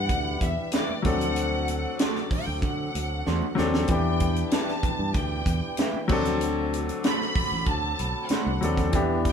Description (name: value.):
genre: lush 1970s-style soul.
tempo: 95 BPM.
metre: 4/4.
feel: straight.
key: unclear.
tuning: A4 = 442 Hz.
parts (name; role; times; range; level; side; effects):
warm studio violin section; melody; 0.0-9.3 s; D5 to B5; -31 LUFS; equal; none.
clear baby grand piano; accompaniment; 0.0-9.3 s; E3 to B4; -29 LUFS; left 4 dB; none.
mellow tonewheel organ; sustained chords; 0.0-9.3 s; D3 to G4; -37 LUFS; right 1 dB; slow rotary speaker.
fingered electric bass; bass; 0.0-9.3 s; A1 to D3; -29 LUFS; right 1 dB; none.
vibraphone with soft mallets; texture; 0.0-8.8 s; G4 to D6; -40 LUFS; left 1 dB; none.
tight funk drum kit; drums; 0.1-9.3 s; crash cymbal, hi-hat, kick drum, snare drum; -28 LUFS; equal; none.
congas; percussion; 0.1-9.3 s; none; -38 LUFS; right 4 dB; none.
electric guitar through a small old amp; riff; 0.7-8.5 s; G3 to C5; -33 LUFS; right 4 dB; none.
room: light reverb.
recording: band playing live in one room.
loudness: -23 LUFS.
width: side -7 dB against mid.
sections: 0.0-9.3 A section.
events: drum fill 3.3-3.9.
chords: 0.0 Em7; 1.1 D7; 3.9 Em7; 6.1 D7.